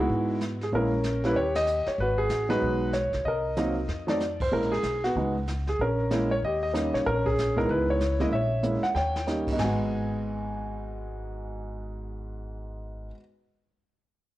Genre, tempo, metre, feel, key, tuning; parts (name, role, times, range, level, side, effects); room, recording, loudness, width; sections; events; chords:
jazz piano trio; 190 BPM; 4/4; swing 62% on 8ths; G# minor; A4 = 440 Hz
warm concert grand piano; melody; 0.0-13.2 s; G#2 to G#5; -26 LUFS; equal
upright bass; bass; 0.0-13.1 s; G#1 to G#2; -32 LUFS; equal
jazz brush drum kit; drums; 0.1-9.7 s; brushed snare drum, crash cymbal, hi-hat, kick drum, ride cymbal, snare drum, splash cymbal, toms; -38 LUFS; equal; cassette tape
light reverb, small room ambience; home recording on cassette; -24 LUFS; side -15 dB against mid
0.0-4.5 A section; 4.5-9.6 B section; 9.6-12.1 C section
band accent 1.5; drum fill 3.9-4.2, 8.6-9.3
0.0 C#m7 (rootless); 0.7 A#m7b5; 1.4 D#; 2.0 G#m7; 3.3 Cm7b5; 3.9 F7(no3); 4.5 A#m7b5; 5.2 C#5; 5.8 A#m7b5; 6.4 D#7; 7.1 A#m7; 7.7 C#m7; 8.3 A#m7b5; 9.0 D#7; 9.6 G#m7